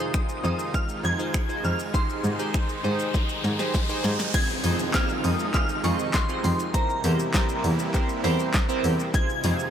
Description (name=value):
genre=dance-pop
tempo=100 BPM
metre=4/4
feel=straight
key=F minor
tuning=A4 = 438 Hz
part: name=shimmering bell with halo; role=melody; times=0.0-9.7 s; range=Bb5 to Ab6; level=-31 LUFS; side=left 1 dB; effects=ensemble chorus, tremolo, dub echo
part: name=chorused retro synth keys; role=accompaniment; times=0.0-9.6 s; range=C4 to Eb5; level=-30 LUFS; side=right 2 dB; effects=sidechain pumping, dub echo
part: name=supersaw pad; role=sustained chords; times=0.0-9.7 s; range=C3 to F4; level=-33 LUFS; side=equal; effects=sidechain pumping
part: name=riser and downlifter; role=sound effects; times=0.9-9.1 s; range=none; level=-35 LUFS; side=left 1 dB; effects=none
part: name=punchy analog drum machine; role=drums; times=0.1-9.7 s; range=crash cymbal, finger snaps, handclaps, hi-hat, kick drum, shaker, snare drum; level=-26 LUFS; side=equal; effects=dub echo
part: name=warm cello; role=bass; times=0.4-9.5 s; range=E2 to Ab2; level=-26 LUFS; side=equal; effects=sidechain pumping
room=light reverb, digital ambience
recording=echo-heavy mix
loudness=-22 LUFS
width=side -9 dB against mid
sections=0.0-4.3 A section; 4.3-9.7 B section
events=riser 0.9-4.3; drum fill 3.1-4.3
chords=0.0 Fm7; 1.9 Abmaj7; 4.3 Fm7; 6.7 C7/E; 9.1 Fm7